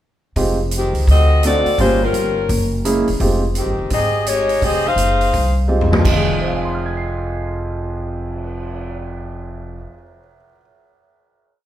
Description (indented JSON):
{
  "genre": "jazz, big band swing",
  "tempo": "169 BPM",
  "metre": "4/4",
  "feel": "swing 64% on 8ths",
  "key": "F minor",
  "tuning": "A4 = 437 Hz",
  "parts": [
    { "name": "clear grand piano", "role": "accompaniment", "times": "0.4-3.4, 5.7-10.6 s", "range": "F2 to C7", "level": "-21 LUFS", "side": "right 2 dB", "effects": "none" },
    { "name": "upright bass", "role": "bass", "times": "0.4-9.8 s", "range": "Fb1 to Eb2", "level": "-20 LUFS", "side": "equal", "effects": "none" },
    { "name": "swinging big-band drum kit", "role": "drums", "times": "0.4-8.8 s", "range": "crash cymbal, cymbal swell, hi-hat, kick drum, toms", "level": "-22 LUFS", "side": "equal", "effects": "none" },
    { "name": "mellow saxophone section", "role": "melody", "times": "0.8-5.6 s", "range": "Eb3 to F5", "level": "-17 LUFS", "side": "left 2 dB", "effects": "none" }
  ],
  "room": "wet recital hall reverb, RT60 1.4 s",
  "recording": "recorded in a church or concert hall",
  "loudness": "-15 LUFS",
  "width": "side -12 dB against mid",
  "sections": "0.4-6.0 A section; 6.0-8.9 final chord",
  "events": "drum fill 5.7-6.0",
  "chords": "0.4 Fm9; 1.1 D7b9; 1.8 Gm7b5; 2.5 Gb9; 3.2 Fm9; 6.0 Fm7"
}